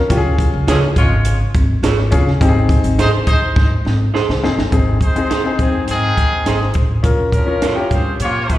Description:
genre	uptempo 1960s-style soul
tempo	104 BPM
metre	4/4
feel	straight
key	Ab major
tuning	A4 = 443 Hz
part	upright bass	bass	0.0-8.6 s	Gb1 to Db3	-17 LUFS	equal	none
part	warm upright piano	accompaniment	0.1-8.4 s	C4 to Bb4	-20 LUFS	left 3 dB	slapback echo
part	compact cocktail drum kit	drums	0.1-8.6 s	hi-hat, kick drum, snare drum	-17 LUFS	equal	none
part	clear horn section	second line	0.7-8.6 s	Eb3 to Db5	-20 LUFS	left 1 dB	slapback echo
part	electric guitar through a small old amp	stabs	0.7-7.7 s	Eb4 to Db5	-23 LUFS	right 6 dB	slapback echo
room	light reverb, small room ambience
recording	live gig heard through the venue's PA, recital hall reverb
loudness	-13 LUFS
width	side -14 dB against mid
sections	0.0-4.7 A section; 4.7-8.6 B section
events	drum fill 3.6-4.7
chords	0.1 Db; 2.4 Ab; 7.0 Bbm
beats	| 0.10 0.68 1.25 1.83 | 2.41 2.98 3.56 4.14 | 4.72 5.30 5.88 6.46 | 7.04 7.62 8.20

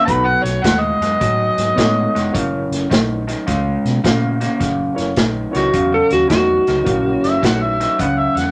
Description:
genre	electric blues shuffle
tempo	106 BPM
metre	4/4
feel	swing 66% on 8ths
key	F# mixolydian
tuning	A4 = 444 Hz
part	overdriven harmonica	second line	0.0-2.5, 7.2-8.5 s	B4 to B5	-20 LUFS	equal	none
part	electric guitar through a small old amp	riff	0.0-8.5 s	F#2 to A#3	-23 LUFS	equal	none
part	barky reed electric piano	accompaniment	0.1-7.7 s	B3 to C#5	-26 LUFS	equal	overdrive, fast tremolo
part	vintage muted fingered electric bass	bass	0.1-8.5 s	E#1 to B2	-26 LUFS	equal	none
part	vintage drum kit	drums	0.1-8.5 s	hi-hat, kick drum, snare drum	-23 LUFS	equal	none
part	clean lap steel guitar	melody	5.6-8.0 s	F#4 to A4	-19 LUFS	equal	none
room	moderate club reverb, RT60 0.7 s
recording	none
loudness	-17 LUFS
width	mono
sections	0.0-4.6 A section; 4.6-8.5 B section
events	harmonica solo 0.0-4.6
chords	0.1 B7; 2.3 F#7; 3.5 C#5; 4.6 F#7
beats	| 0.07 0.63 1.20 1.76 | 2.33 2.90 3.46 4.03 | 4.59 5.16 5.72 6.29 | 6.86 7.42 7.99

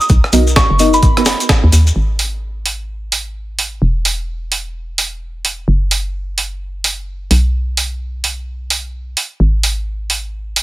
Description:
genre	UK garage, two-step garage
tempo	129 BPM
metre	4/4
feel	swing 62% on 16ths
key	unclear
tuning	A4 = 442 Hz
part	soft synth bell	melody	0.0-1.3 s	B5 to D#6	-18 LUFS	right 1 dB	chorus, digital delay
part	shekere	percussion	0.0-1.9 s	none	-22 LUFS	left 2 dB	none
part	hollow knocking FM bass	bass	0.1-10.6 s	E1 to D#2	-17 LUFS	equal	none
part	breakbeat sampler-style drum kit	drums	0.1-10.6 s	hi-hat, rim click, snare drum	-16 LUFS	right 2 dB	none
part	electronic kick drum	drums	0.1-1.6 s	none	-12 LUFS	equal	none
part	deep mellow chord stab	stabs	0.3-1.2 s	B3 to D#5	-16 LUFS	equal	chorus, phaser, digital delay
room	digital ambience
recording	none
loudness	-14 LUFS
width	side -17 dB against mid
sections	0.0-2.0 A section; 2.0-10.6 B section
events	none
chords	0.0 Bmaj7; 2.0 N.C.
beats	| 0.10 0.56 1.03 1.49 | 1.96 2.42 2.89 3.35 | 3.82 4.28 4.75 5.21 | 5.68 6.14 6.61 7.08 | 7.54 8.01 8.47 8.94 | 9.40 9.87 10.33

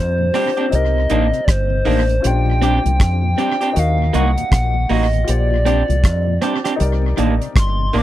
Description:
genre	lovers rock reggae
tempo	79 BPM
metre	4/4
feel	swing 60% on 16ths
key	Bb major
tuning	A4 = 441 Hz
part	reedy FM lead	melody	0.0-8.0 s	C5 to D6	-21 LUFS	equal	chorus, tape echo
part	warm baby grand piano	accompaniment	0.0-8.0 s	C4 to Eb5	-28 LUFS	left 5 dB	none
part	deep dub fingered electric bass	bass	0.0-8.0 s	G1 to F2	-17 LUFS	equal	none
part	mellow tonewheel organ	accompaniment	0.2-8.0 s	Eb2 to Eb4	-28 LUFS	left 12 dB	slow rotary speaker, tape echo
part	electric guitar through a small old amp	stabs	0.3-8.0 s	Eb3 to G4	-19 LUFS	right 5 dB	none
part	damped 70s drum kit	drums	0.3-8.0 s	hi-hat, kick drum, rim click	-19 LUFS	equal	tape echo
room	little or no reverb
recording	dry, close 1970s-style studio recording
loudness	-14 LUFS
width	side -13 dB against mid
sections	0.0-8.0 A section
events	none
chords	0.0 Bb69; 0.7 Cm9; 2.2 Bb69; 3.8 Ebm; 5.3 Bb69; 6.8 Cm9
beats	0.72 1.48 | 2.24 3.00 3.76 4.52 | 5.28 6.04 6.80 7.56

